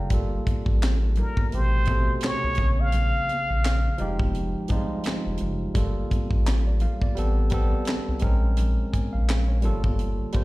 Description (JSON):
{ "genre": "R&B, neo-soul", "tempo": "85 BPM", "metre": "4/4", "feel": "swing 57% on 16ths", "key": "G minor", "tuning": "A4 = 436 Hz", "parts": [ { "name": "barky tine electric piano", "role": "accompaniment", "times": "0.0-10.4 s", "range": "B2 to Bb5", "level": "-30 LUFS", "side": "right 1 dB", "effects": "slapback echo" }, { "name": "round analog bass", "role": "bass", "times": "0.0-10.2 s", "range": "F1 to C2", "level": "-23 LUFS", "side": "equal", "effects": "none" }, { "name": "tight funk drum kit", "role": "drums", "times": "0.1-10.4 s", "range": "handclaps, hi-hat, kick drum, snare drum", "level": "-26 LUFS", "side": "equal", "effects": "none" }, { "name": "congas", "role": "percussion", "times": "0.1-10.4 s", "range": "none", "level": "-39 LUFS", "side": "left 4 dB", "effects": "none" }, { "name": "trumpet with plunger mute", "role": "melody", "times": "1.2-4.2 s", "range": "Bb4 to F5", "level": "-27 LUFS", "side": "equal", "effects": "slapback echo" } ], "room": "little or no reverb", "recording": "live gig heard through the venue's PA, recital hall reverb", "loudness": "-22 LUFS", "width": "side -19 dB against mid", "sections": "0.1-10.4 A section", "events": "none", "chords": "0.1 Gm9; 1.5 Am9; 2.6 Bbm9; 4.0 Fm9; 5.8 Gm9; 7.2 Am9; 8.2 Bbm9; 9.6 Gm9" }